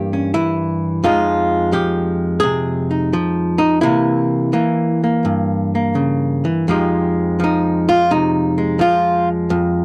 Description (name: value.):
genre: solo jazz.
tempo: 86 BPM.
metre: 4/4.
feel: swing 68% on 8ths, rubato.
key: F minor.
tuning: A4 = 440 Hz.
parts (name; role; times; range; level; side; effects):
archtop guitar, miked and amplified; solo; 0.0-9.8 s; F2 to Ab4; -17 LUFS; equal; none.
room: light reverb.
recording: dry, close 1970s-style studio recording.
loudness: -17 LUFS.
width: mono.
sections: 0.0-6.7 A section; 6.7-9.8 B section.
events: hollow-body jazz guitar solo 6.7-9.8.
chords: 0.0 C7b9 (rootless); 1.0 Fm9; 3.8 C7b9; 6.7 Fm9.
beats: 0.35 | 1.04 1.73 2.43 3.12 | 3.82 4.52 5.23 5.95 | 6.67 7.39 8.09 8.79 | 9.49.